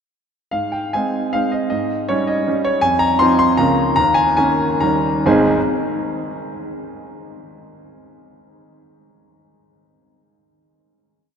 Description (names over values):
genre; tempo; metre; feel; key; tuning
classical, romantic triple-time dance for piano with dotted rhythms; 124-171 BPM; 3/4; rubato; Ab major; A4 = 440 Hz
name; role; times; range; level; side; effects
clear concert grand piano; solo; 0.5-5.6 s; Ab1 to C6; -16 LUFS; equal; none
room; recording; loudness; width
wet cathedral reverb, RT60 5.1 s; in a vast, echoing space; -15 LUFS; side -7 dB against mid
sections
0.5-5.3 A section; 5.3-6.5 final chord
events
slowing down 2.3-5.3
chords
0.5 Ab; 1.7 Eb7/Ab; 2.8 F5; 3.6 Bbm/Db; 4.0 Eb7sus4; 4.8 Eb7; 5.3 Ab